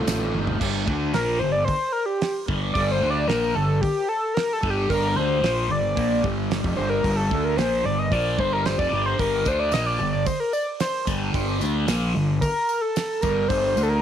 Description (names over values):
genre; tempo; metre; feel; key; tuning
psychedelic rock; 112 BPM; 4/4; straight; G minor; A4 = 441 Hz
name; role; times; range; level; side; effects
overdriven synth lead; melody; 0.0-14.0 s; G4 to Eb5; -24 LUFS; left 1 dB; distortion, chorus, tape echo
thick fuzz guitar; riff; 0.0-14.0 s; F2 to F4; -25 LUFS; equal; distortion, phaser
fuzz fingered electric bass; bass; 0.0-14.0 s; F1 to D2; -28 LUFS; equal; overdrive
damped 70s drum kit; drums; 0.1-13.6 s; crash cymbal, hi-hat, kick drum, ride cymbal, snare drum, toms; -30 LUFS; right 3 dB; none
tambourine; percussion; 0.1-0.2, 9.2-13.9 s; none; -39 LUFS; left 17 dB; none
room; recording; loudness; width
light reverb; 1960s-style stereo; -20 LUFS; side -9 dB against mid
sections
0.6-14.0 A section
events
drum fill 0.3; analog synth lead solo 0.6-14.0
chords
0.0 F7; 0.6 Gm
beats
0.07 | 0.61 1.14 1.68 2.21 | 2.75 3.29 3.82 4.36 | 4.90 5.43 5.97 6.51 | 7.04 7.58 8.12 8.65 | 9.19 9.73 10.27 10.80 | 11.34 11.88 12.42 12.95 | 13.49